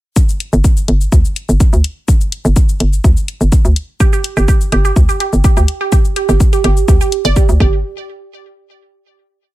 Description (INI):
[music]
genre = minimal techno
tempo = 125 BPM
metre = 4/4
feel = straight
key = unclear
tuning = A4 = 440 Hz
[part]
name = electronic kick drum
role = drums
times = 0.2-7.7 s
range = none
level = -11 LUFS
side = equal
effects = studio reverb
[part]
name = electronic shaker and hi-hat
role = drums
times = 0.2-7.6 s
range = none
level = -24 LUFS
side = left 7 dB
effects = studio reverb
[part]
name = hollow knocking FM bass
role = bass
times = 0.5-7.8 s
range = G1 to D2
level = -12 LUFS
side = equal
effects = sidechain pumping
[part]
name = resonant blip pluck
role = riff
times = 4.0-7.8 s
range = G4 to D5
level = -18 LUFS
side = right 7 dB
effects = phaser, sidechain pumping, ping-pong delay
[sound]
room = little or no reverb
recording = none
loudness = -10 LUFS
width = side -16 dB against mid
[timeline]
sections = 0.2-7.8 groove; 7.8-9.5 final hit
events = none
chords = 0.2 G5; 7.6 N.C.